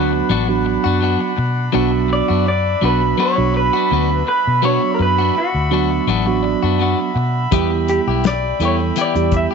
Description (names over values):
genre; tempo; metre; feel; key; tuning
straight-eighth soul blues; 83 BPM; 4/4; swing 54% on 16ths; B minor; A4 = 440 Hz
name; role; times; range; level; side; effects
electric guitar through a small old amp; melody; 0.0-9.5 s; F#4 to E5; -20 LUFS; equal; none
mellow tine electric piano; accompaniment; 0.0-9.5 s; F#3 to F#5; -20 LUFS; right 12 dB; none
brilliant horn section; sustained chords; 0.0-9.5 s; D4 to B5; -25 LUFS; left 1 dB; none
clean electric guitar; stabs; 0.0-9.5 s; E3 to G4; -23 LUFS; left 14 dB; none
vintage muted fingered electric bass; bass; 0.0-9.5 s; A1 to B2; -20 LUFS; left 1 dB; none
warm soul drum kit; drums; 7.5-9.5 s; hi-hat, kick drum, snare drum; -20 LUFS; left 5 dB; none
room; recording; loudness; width
moderate echo chamber reverb, RT60 2.3 s; 1960s-style stereo with parts hard left and right, nothing above 7.8 kHz; -14 LUFS; side -5 dB against mid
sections
0.0-9.5 A section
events
tine electric piano fill 6.1-7.5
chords
0.0 Bm; 7.5 Em